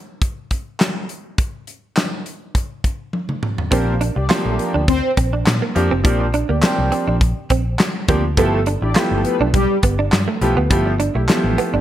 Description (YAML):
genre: early-eighties boogie funk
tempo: 103 BPM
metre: 4/4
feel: straight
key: unclear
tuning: A4 = 440 Hz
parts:
  - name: modern studio drum kit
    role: drums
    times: 0.2-11.7 s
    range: handclaps, hi-hat, kick drum, snare drum, toms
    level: -19 LUFS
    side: equal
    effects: gated reverb
  - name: mellow synth brass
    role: second line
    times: 3.7-9.8 s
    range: G3 to D5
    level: -22 LUFS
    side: left 1 dB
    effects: chorus, phaser
  - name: bright grand piano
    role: accompaniment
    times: 3.7-11.8 s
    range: F3 to G4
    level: -20 LUFS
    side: right 1 dB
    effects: lush chorus
  - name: direct-recorded clean electric guitar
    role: riff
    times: 3.7-11.8 s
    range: A3 to F4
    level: -24 LUFS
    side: right 5 dB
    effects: ensemble chorus
  - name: vintage muted fingered electric bass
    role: bass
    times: 3.7-11.8 s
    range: F1 to Bb2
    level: -20 LUFS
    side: equal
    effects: none
room: light reverb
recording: bright 1980s-style digital production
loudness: -16 LUFS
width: side -12 dB against mid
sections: 0.0-3.7 A section; 3.7-11.8 B section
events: drum fill 3.1-3.7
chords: 0.0 N.C.; 3.7 Bb69; 8.4 G13